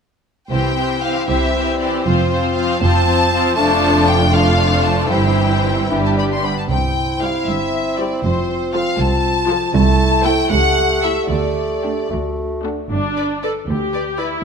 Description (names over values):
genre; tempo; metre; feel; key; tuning
quick classical-period movement for symphony orchestra; 74-81 BPM (dotted quarters); 6/8; rubato; C major; A4 = 440 Hz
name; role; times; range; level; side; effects
rich studio violin section; melody; 0.5-14.3 s; C5 to C6; -20 LUFS; left 2 dB; none
rich studio violin section; second line; 0.5-14.3 s; F4 to D5; -25 LUFS; left 5 dB; none
warm clarinet; second line; 0.5-12.6 s; D4 to G4; -24 LUFS; left 3 dB; none
clear bassoon; accompaniment; 0.5-12.6 s; A3 to E4; -24 LUFS; right 1 dB; none
warm studio viola section; accompaniment; 0.5-14.4 s; E3 to A4; -22 LUFS; equal; none
rich studio double bass section; bass; 0.5-14.3 s; F1 to D2; -22 LUFS; right 2 dB; none
rich symphonic cello section; bass; 0.5-14.3 s; C2 to C3; -22 LUFS; right 4 dB; none
room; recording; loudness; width
moderate scoring stage reverb, RT60 1.9 s; none; -14 LUFS; side -6 dB against mid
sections
0.5-12.9 A section; 12.9-14.4 B section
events
none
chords
0.5 C; 2.1 F; 3.6 Dm/F; 5.1 C/G; 5.9 G; 6.7 C; 8.2 F; 9.7 Am/C; 10.5 A7/C#; 11.3 Dsus4; 12.9 G